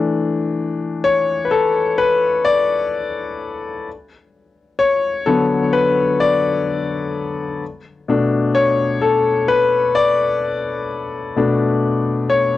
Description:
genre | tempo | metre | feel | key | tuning
R&B | 64 BPM | 4/4 | swing 58% on 16ths | B minor | A4 = 438 Hz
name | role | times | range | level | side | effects
warm concert grand piano | solo | 0.0-12.6 s | B2 to D5 | -16 LUFS | left 3 dB | none
room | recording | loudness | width
moderate small room reverb, RT60 0.6 s | home recording on cassette | -15 LUFS | side -14 dB against mid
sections
0.0-12.6 A section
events
grand piano solo 0.0-12.6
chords
0.0 E7sus4; 3.9 D6; 7.6 Bm7

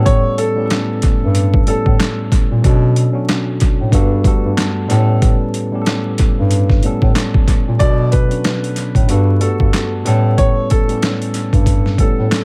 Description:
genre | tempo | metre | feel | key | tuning
hip hop, boom-bap hip-hop | 93 BPM | 4/4 | swing 57% on 16ths | unclear | A4 = 440 Hz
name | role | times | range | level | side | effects
tine electric piano | accompaniment | 0.0-12.4 s | G2 to A4 | -21 LUFS | equal | cassette tape, tape echo
breathy bass clarinet | bass | 0.0-12.3 s | G2 to B2 | -17 LUFS | equal | none
warm upright piano | melody | 0.1-2.2, 7.8-12.4 s | A4 to D5 | -24 LUFS | equal | tape echo
boom bap sampler-style drum kit | drums | 0.1-12.4 s | handclaps, hi-hat, kick drum, snare drum | -18 LUFS | equal | overdrive, tape echo
room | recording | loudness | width
little or no reverb | echo-heavy mix, vinyl crackle | -15 LUFS | mono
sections
0.0-7.8 A section; 7.8-12.4 B section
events
none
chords
0.0 A7; 2.6 Bm7; 3.9 Gmaj7; 4.9 A7; 7.8 Bm7; 9.1 Gmaj7; 10.1 A7

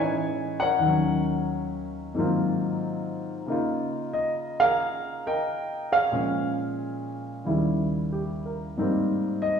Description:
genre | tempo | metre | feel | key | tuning
solo jazz | 91 BPM | 4/4 | swing 69% on 8ths | Ab major | A4 = 440 Hz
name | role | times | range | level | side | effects
warm baby grand piano | solo | 0.0-9.6 s | Eb2 to G#5 | -24 LUFS | equal | none
room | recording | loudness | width
wet recital hall reverb, RT60 1.4 s | recorded in a church or concert hall | -24 LUFS | side -7 dB against mid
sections
0.0-9.6 A section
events
none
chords
0.0 Amaj9; 0.8 Ebm7; 2.1 Ab13; 3.5 Db69; 6.1 Bbm7; 7.4 Eb7b9; 8.8 Abmaj9

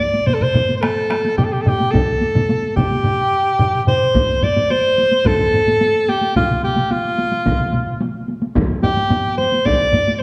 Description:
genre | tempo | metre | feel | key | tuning
japanese traditional, taiko drum ensemble | 109 BPM | 4/4 | straight | G suspended pentatonic | A4 = 438 Hz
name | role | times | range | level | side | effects
warm alto saxophone | melody | 0.0-10.2 s | F4 to D5 | -19 LUFS | equal | slapback echo
taiko ensemble | percussion | 0.0-10.2 s | none | -25 LUFS | equal | none
solo taiko drums | percussion | 0.3-10.1 s | none | -24 LUFS | equal | none
taiko ensemble | percussion | 0.3-8.0 s | none | -26 LUFS | equal | none
taiko ensemble | percussion | 1.9-9.8 s | none | -25 LUFS | equal | none
room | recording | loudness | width
wet recital hall reverb, RT60 1.7 s | none | -17 LUFS | mono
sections
0.0-4.1 A section; 4.1-10.2 B section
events
none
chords
none

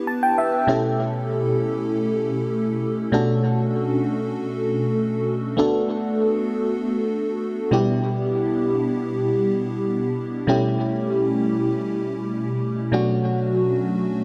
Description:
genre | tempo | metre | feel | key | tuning
pop | free time | none | none | unclear | A4 = 439 Hz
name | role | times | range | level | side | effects
FM electric piano with soft pad layer | solo | 0.0-14.2 s | B2 to A5 | -22 LUFS | equal | chorus, phaser, tape echo
room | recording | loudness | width
moderate lush hall reverb, RT60 2.7 s | none | -22 LUFS | mono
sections
0.0-14.2 A section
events
FM electric piano fill 0.0-0.7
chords
0.0 Em7/B; 0.7 A7/B; 3.1 Dmaj7/B; 5.6 Bm7; 7.7 Em7/B; 10.5 A7/B; 12.9 Dmaj7/B

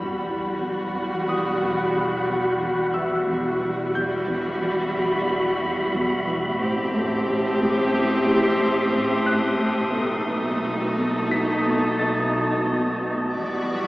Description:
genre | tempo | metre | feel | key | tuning
cinematic, suspense film score | 89 BPM | 5/4 | straight | E harmonic minor | A4 = 440 Hz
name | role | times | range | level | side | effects
rich chamber viola section | accompaniment | 0.0-13.9 s | G3 to G4 | -24 LUFS | equal | none
wind-like tuned noise texture | sustained chords | 0.0-13.9 s | F#4 to C6 | -26 LUFS | equal | built-in reverb
warm symphonic cello section | riff | 0.0-13.9 s | E2 to B3 | -30 LUFS | equal | none
dark chamber cello section | bass | 0.0-13.9 s | E2 to B2 | -31 LUFS | right 1 dB | none
rich chamber double bass section | bass | 0.0-13.9 s | E1 to B1 | -35 LUFS | equal | none
sub drop | sound effects | 0.0-3.3 s | none | -46 LUFS | equal | none
bright concert grand piano | texture | 1.3-13.9 s | E5 to B6 | -33 LUFS | equal | none
warm chamber violin section | texture | 6.6-13.9 s | A5 to D#6 | -35 LUFS | left 1 dB | none
room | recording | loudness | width
wet cathedral reverb, RT60 4.3 s | recorded in a church or concert hall, small speaker sound | -20 LUFS | side -19 dB against mid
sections
0.0-13.9 A section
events
impact 0.0-3.3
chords
0.0 Emadd9; 6.6 Am7; 10.0 B7; 13.4 Emadd9

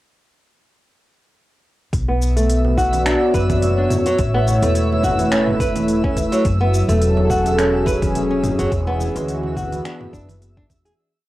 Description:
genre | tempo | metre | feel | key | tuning
organic downtempo | 106 BPM | 4/4 | swing 55% on 16ths | B dorian | A4 = 440 Hz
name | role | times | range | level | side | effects
warm analog pad | sustained chords | 1.9-11.0 s | E3 to D5 | -20 LUFS | equal | chorus, sidechain pumping, cassette tape
upright bass | bass | 1.9-10.9 s | E1 to D2 | -20 LUFS | equal | sidechain pumping
electronic kick drum | drums | 1.9-10.8 s | none | -24 LUFS | equal | cassette tape
organic electronic drum kit | drums | 1.9-11.0 s | finger snaps, hi-hat, shaker, toms | -26 LUFS | equal | overdrive, cassette tape
twinkling granular texture | texture | 2.5-11.0 s | E5 | -31 LUFS | right 1 dB | built-in reverb, cassette tape, plate reverb
flamenco guitar | arpeggios | 2.1-10.9 s | F#3 to B4 | -22 LUFS | equal | low-pass filter, cassette tape, tape echo, plate reverb
congas | percussion | 2.6-10.8 s | none | -31 LUFS | right 6 dB | none
room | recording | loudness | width
moderate studio reverb, RT60 0.6 s | home recording on cassette | -15 LUFS | side -16 dB against mid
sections
1.9-11.0 groove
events
fade-out 8.0-11.0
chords
1.9 Bm7; 4.2 A; 6.5 F#m7; 8.7 E7

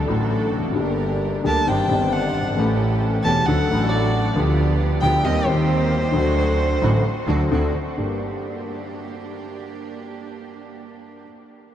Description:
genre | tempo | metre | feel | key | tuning
tango | 133 BPM | 4/4 | rubato | G harmonic minor | A4 = 440 Hz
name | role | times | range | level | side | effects
warm concert grand piano | accompaniment | 0.0-11.2 s | E1 to A4 | -22 LUFS | left 2 dB | analog chorus
clear studio string section | stabs | 0.0-11.2 s | A3 to C5 | -31 LUFS | right 6 dB | analog delay
rich double bass | bass | 0.0-8.2 s | E1 to Eb2 | -24 LUFS | right 2 dB | none
warm violin | second line | 1.5-7.5 s | C5 to A5 | -25 LUFS | right 1 dB | analog delay
room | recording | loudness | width
wet huge ambient reverb, RT60 8.5 s | dreamy mix soaked in reverb | -18 LUFS | side -10 dB against mid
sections
0.0-8.0 A section; 8.0-11.6 B section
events
violin solo 0.0-8.0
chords
0.0 D; 0.8 Gm; 1.7 Cmadd9/G; 2.6 A7; 3.5 D; 4.4 G7/D; 5.3 Cm/Eb; 6.2 D; 7.5 D7; 8.0 Gm

